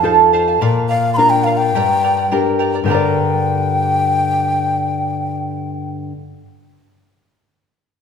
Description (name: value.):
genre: andean folk.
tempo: 106 BPM.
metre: 2/4.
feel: straight.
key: G minor.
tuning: A4 = 438 Hz.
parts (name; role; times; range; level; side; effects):
breathy large quena; melody; 0.0-5.9 s; F5 to C6; -17 LUFS; left 2 dB; none.
charango; accompaniment; 0.0-6.4 s; G4 to Bb5; -18 LUFS; right 8 dB; none.
nylon-string guitar; accompaniment; 0.0-6.2 s; F2 to D5; -18 LUFS; left 3 dB; none.
room: wet recital hall reverb, RT60 1.6 s.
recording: recorded in a church or concert hall.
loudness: -14 LUFS.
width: side -6 dB against mid.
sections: 0.0-2.9 A section; 2.9-5.1 B section.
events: none.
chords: 0.0 F7; 0.6 Bb; 1.7 Gm.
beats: 0.05 | 0.61 1.18 | 1.74 2.31 | 2.87 3.44 | 4.00 4.57.